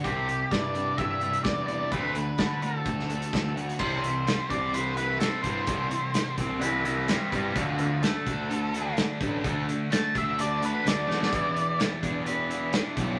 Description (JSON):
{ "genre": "indie rock", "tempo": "128 BPM", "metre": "4/4", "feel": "straight", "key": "unclear", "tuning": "A4 = 439 Hz", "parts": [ { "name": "octave-fuzz lead guitar", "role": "melody", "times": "0.0-11.8 s", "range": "C4 to A5", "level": "-32 LUFS", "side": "equal", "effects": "distortion" }, { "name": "biting overdriven guitar", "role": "riff", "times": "0.0-13.2 s", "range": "C3 to B4", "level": "-34 LUFS", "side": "equal", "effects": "none" }, { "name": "raw garage guitar", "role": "riff", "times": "0.0-13.2 s", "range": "E2 to F#4", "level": "-38 LUFS", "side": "equal", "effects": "overdrive" }, { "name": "fuzz picked electric bass", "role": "bass", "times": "0.0-13.2 s", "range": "A1 to D3", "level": "-35 LUFS", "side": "equal", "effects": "overdrive" }, { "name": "loose indie drum kit", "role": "drums", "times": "0.0-13.1 s", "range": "crash cymbal, hi-hat, kick drum, snare drum", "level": "-33 LUFS", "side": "equal", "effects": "none" }, { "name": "combo organ", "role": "sustained chords", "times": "11.3-13.2 s", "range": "B3 to D5", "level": "-45 LUFS", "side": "equal", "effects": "spring reverb" } ], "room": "moderate studio reverb, RT60 0.7 s", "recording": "none", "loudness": "-28 LUFS", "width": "mono", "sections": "0.0-3.8 A section; 3.8-13.2 B section", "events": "lead electric guitar solo 3.8-13.2; drum fill 11.1", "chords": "0.0 Cadd9; 1.9 D7; 3.8 Cmaj7; 7.6 D; 11.3 Em7", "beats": "| 0.04 0.51 0.98 1.45 | 1.92 2.39 2.86 3.33 | 3.80 4.27 4.74 5.21 | 5.68 6.15 6.62 7.09 | 7.56 8.03 8.50 8.97 | 9.44 9.91 10.38 10.85 | 11.33 11.80 12.27 12.74" }